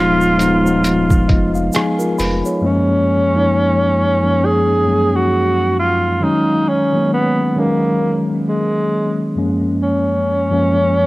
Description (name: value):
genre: lo-fi hip hop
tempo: 67 BPM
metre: 4/4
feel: swing 58% on 16ths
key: F# major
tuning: A4 = 443 Hz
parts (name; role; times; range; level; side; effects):
- breathy tenor saxophone; melody; 0.0-11.1 s; G#3 to G#4; -17 LUFS; right 1 dB; low-pass filter, cassette tape
- mellow tine electric piano; accompaniment; 0.0-11.1 s; F#2 to B5; -16 LUFS; left 1 dB; medium stereo tremolo, cassette tape, low-pass filter
- warm sub bass; bass; 0.0-2.4 s; D#1 to E#1; -22 LUFS; equal; none
- egg shaker; percussion; 0.2-2.6 s; none; -35 LUFS; right 3 dB; none
- lo-fi sampler-style drum kit; drums; 0.4-2.4 s; hi-hat, kick drum, rim click; -18 LUFS; equal; none
room: moderate lush hall reverb, RT60 2.5 s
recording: home recording on cassette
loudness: -13 LUFS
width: side -20 dB against mid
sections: 0.0-2.6 A section; 2.6-11.1 B section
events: none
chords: 0.0 C#13/D# (rootless); 2.6 F#maj7; 6.2 Bmaj13/D# (rootless); 9.4 F#maj7